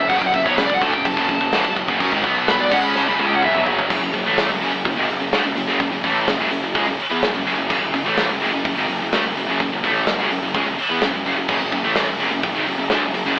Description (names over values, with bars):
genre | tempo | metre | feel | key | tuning
heavy metal | 126 BPM | 4/4 | straight | F# minor | A4 = 440 Hz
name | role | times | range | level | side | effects
high-gain lead guitar | melody | 0.0-3.6 s | B4 to B5 | -19 LUFS | equal | distortion
distorted electric guitar | riff | 0.0-13.4 s | F#2 to C#4 | -25 LUFS | equal | distortion
heavy high-gain guitar | riff | 0.0-13.4 s | F#2 to C#4 | -25 LUFS | left 1 dB | none
heavy high-gain guitar | riff | 0.0-13.4 s | F#2 to C#4 | -23 LUFS | right 1 dB | distortion
fuzz picked electric bass | bass | 0.0-13.4 s | F#1 to F#2 | -24 LUFS | equal | overdrive
modern studio drum kit | drums | 0.1-13.3 s | crash cymbal, hi-hat, kick drum, snare drum, toms | -23 LUFS | equal | none
room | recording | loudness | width
moderate stone room reverb, RT60 1.4 s | band playing live in one room, AM radio sound | -16 LUFS | side -22 dB against mid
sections
0.0-3.9 A section; 3.9-13.4 B section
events
lead electric guitar solo 0.0-3.9; drum fill 3.0-3.9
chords
0.0 F#m; 2.2 B5; 2.7 F#5; 3.9 F#m